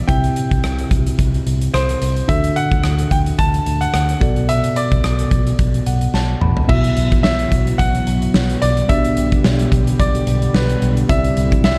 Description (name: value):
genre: 1980s-style pop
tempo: 109 BPM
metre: 4/4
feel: swing 55% on 16ths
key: unclear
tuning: A4 = 441 Hz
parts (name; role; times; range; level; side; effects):
- tine electric piano; accompaniment; 0.0-11.8 s; B2 to B5; -23 LUFS; equal; overdrive
- clear concert grand piano; melody; 0.1-11.8 s; B4 to A5; -25 LUFS; equal; tape echo
- vintage muted fingered electric bass; bass; 0.1-11.8 s; A1 to D2; -22 LUFS; equal; none
- big rock drum kit; drums; 0.1-11.8 s; crash cymbal, hi-hat, kick drum, rim click, snare drum, toms; -21 LUFS; equal; none
- lush unison pad; sustained chords; 6.7-11.8 s; D3 to G4; -27 LUFS; equal; chorus
room: small room ambience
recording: dark, warm production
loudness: -17 LUFS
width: mono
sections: 0.0-6.7 A section; 6.7-11.8 B section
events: tine electric piano fill 5.6-6.7; drum fill 6.1-6.7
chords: 0.1 C; 2.3 Dadd9; 4.2 Bm7; 6.7 Bsus4; 8.9 G/B; 11.1 Cadd9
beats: | 0.09 0.64 1.19 1.74 | 2.29 2.84 3.39 3.94 | 4.49 5.04 5.59 6.14 | 6.69 7.24 7.79 8.34 | 8.89 9.44 9.99 10.54 | 11.10 11.65